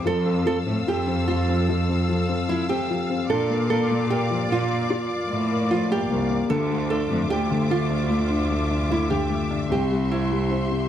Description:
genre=pop ballad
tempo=75 BPM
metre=4/4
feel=straight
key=F major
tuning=A4 = 444 Hz
part: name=nylon-string guitar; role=melody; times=0.0-10.9 s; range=E4 to A4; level=-27 LUFS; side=right 5 dB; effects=none
part: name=warm upright piano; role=accompaniment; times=0.0-10.9 s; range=C3 to Bb4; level=-26 LUFS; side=left 5 dB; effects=none
part: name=warm studio string section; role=sustained chords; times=0.0-10.9 s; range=F4 to E6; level=-30 LUFS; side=left 1 dB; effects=none
part: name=warm studio cello section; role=bass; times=0.0-10.9 s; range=C2 to Bb2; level=-25 LUFS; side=right 1 dB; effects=none
room=light reverb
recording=dry, close 1970s-style studio recording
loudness=-21 LUFS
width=side -10 dB against mid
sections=0.0-10.9 A section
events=none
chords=0.1 Fmaj7; 3.3 Bb; 6.5 Dmadd9; 9.7 C

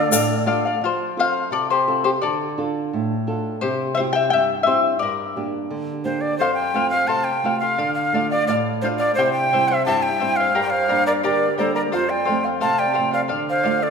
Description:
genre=andean folk, Andean ensemble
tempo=86 BPM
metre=2/4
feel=straight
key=unclear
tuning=A4 = 444 Hz
part: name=breathy bright quena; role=melody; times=0.0-0.4, 6.0-13.9 s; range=C5 to A5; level=-21 LUFS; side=right 1 dB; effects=none
part: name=breathy large quena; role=second line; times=0.0-0.4, 10.6-13.9 s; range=F4 to F5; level=-25 LUFS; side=right 4 dB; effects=none
part: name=charango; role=accompaniment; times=0.0-13.9 s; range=E4 to Bb5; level=-22 LUFS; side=left 4 dB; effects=none
part: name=nylon-string guitar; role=accompaniment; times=0.0-13.9 s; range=F2 to A4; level=-25 LUFS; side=right 3 dB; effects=none
room=wet scoring stage reverb, RT60 1.8 s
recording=minimal, uncompressed stereo recording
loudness=-18 LUFS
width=side -6 dB against mid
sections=0.8-6.4 A section; 6.4-13.9 B section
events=charango solo 0.8-6.4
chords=0.0 Dm; 0.8 F; 2.2 Dm; 3.6 C; 5.0 Gm; 6.4 F; 7.8 Dm; 9.2 C; 10.6 Gm; 11.9 F; 13.3 Dm

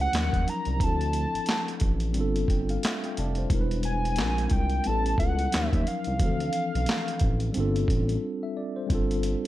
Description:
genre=R&B, neo-soul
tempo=89 BPM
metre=4/4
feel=swing 58% on 16ths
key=unclear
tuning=A4 = 440 Hz
part: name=hollow square lead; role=melody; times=0.0-7.9 s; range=F5 to Bb5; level=-30 LUFS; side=left 1 dB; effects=chorus
part: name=tine electric piano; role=accompaniment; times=0.0-9.5 s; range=E3 to A5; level=-30 LUFS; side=equal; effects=medium stereo tremolo
part: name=smooth synth bass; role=bass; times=0.0-9.4 s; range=E1 to Eb2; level=-28 LUFS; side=equal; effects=none
part: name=boom bap sampler-style drum kit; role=drums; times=0.1-9.4 s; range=handclaps, hi-hat, kick drum, snare drum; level=-28 LUFS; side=equal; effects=none
room=little or no reverb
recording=dark, warm production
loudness=-24 LUFS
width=side -15 dB against mid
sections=0.0-8.9 A section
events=tine electric piano fill 2.5-3.5; break 8.2-8.9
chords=0.1 Ebm7; 0.8 Dm7; 2.2 G7sus4; 3.5 Em7; 4.2 Bb9; 4.8 A7; 5.5 Ebm7; 6.2 Dm7; 7.5 G7sus4

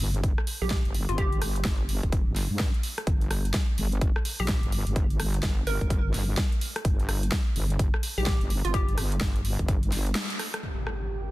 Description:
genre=bass house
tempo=127 BPM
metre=4/4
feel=swing 61% on 16ths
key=G minor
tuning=A4 = 440 Hz
part: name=wobble bass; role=bass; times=0.0-10.1 s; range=F1 to G2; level=-28 LUFS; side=equal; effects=chorus, tube saturation, sidechain pumping
part: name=big-room dance drum kit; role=drums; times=0.0-11.0 s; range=hi-hat, rim click, snare drum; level=-32 LUFS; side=equal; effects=none
part: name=electronic kick drum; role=drums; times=0.2-9.8 s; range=none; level=-26 LUFS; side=equal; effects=none
part: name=hollow square pluck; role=melody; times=0.6-9.4 s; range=F4 to Bb4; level=-34 LUFS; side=right 1 dB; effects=lush chorus, digital delay
part: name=impact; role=sound effects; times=10.6-11.3 s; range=none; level=-32 LUFS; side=equal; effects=none
part: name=airy breathy pad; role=texture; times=10.7-11.3 s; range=G4 to Bb4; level=-39 LUFS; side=right 3 dB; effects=chorus, sidechain pumping
room=little or no reverb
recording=dense, heavily limited modern master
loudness=-24 LUFS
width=side -18 dB against mid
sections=0.0-10.6 A section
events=break 10.2-10.6; band accent 10.2; impact 10.6-11.3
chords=0.0 N.C.; 10.6 Gm

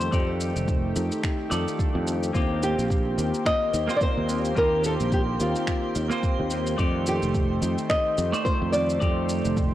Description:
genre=sunset chillout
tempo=108 BPM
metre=4/4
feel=swing 57% on 16ths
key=unclear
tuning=A4 = 441 Hz
part: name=flamenco guitar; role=melody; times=0.0-9.7 s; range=F4 to Eb5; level=-27 LUFS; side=equal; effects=tape echo
part: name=clean electric guitar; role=accompaniment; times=0.0-9.7 s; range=Eb3 to D5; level=-31 LUFS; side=moving between left 3 dB and right 4 dB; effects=auto-pan, tape echo
part: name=lush unison pad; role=sustained chords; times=0.0-9.7 s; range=Eb3 to D5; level=-32 LUFS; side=right 1 dB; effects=chorus
part: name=concert harp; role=arpeggios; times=0.0-9.7 s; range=C4 to Bb4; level=-36 LUFS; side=left 5 dB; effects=vintage 12-bit sampler grit, tape echo
part: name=sustaining fretless electric bass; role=bass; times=0.0-9.7 s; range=F1 to F2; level=-27 LUFS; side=equal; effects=wide subtle chorus
part: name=electronic shaker and finger snaps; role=drums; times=0.0-9.7 s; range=none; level=-36 LUFS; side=equal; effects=none
part: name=electronic kick drum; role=drums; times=0.1-9.7 s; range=none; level=-26 LUFS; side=equal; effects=none
part: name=drifting glass-harmonics texture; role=texture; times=2.8-9.7 s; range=C6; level=-40 LUFS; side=right 6 dB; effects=chorus, built-in reverb
room=little or no reverb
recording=dry, gritty hardware recording, cassette tape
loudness=-22 LUFS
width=side -13 dB against mid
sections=0.0-9.7 A section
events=none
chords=0.0 F13; 2.3 Eb6; 6.8 F13

